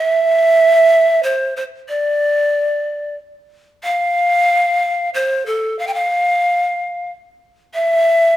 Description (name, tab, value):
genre	andean folk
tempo	92 BPM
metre	3/4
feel	straight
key	unclear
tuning	A4 = 442 Hz
part	breathy hollow large pan pipes	solo	0.0-8.4 s	A4 to G5	-13 LUFS	equal	none
room	light reverb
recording	minimal, uncompressed stereo recording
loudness	-13 LUFS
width	side -13 dB against mid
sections	0.0-8.4 A section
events	none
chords	none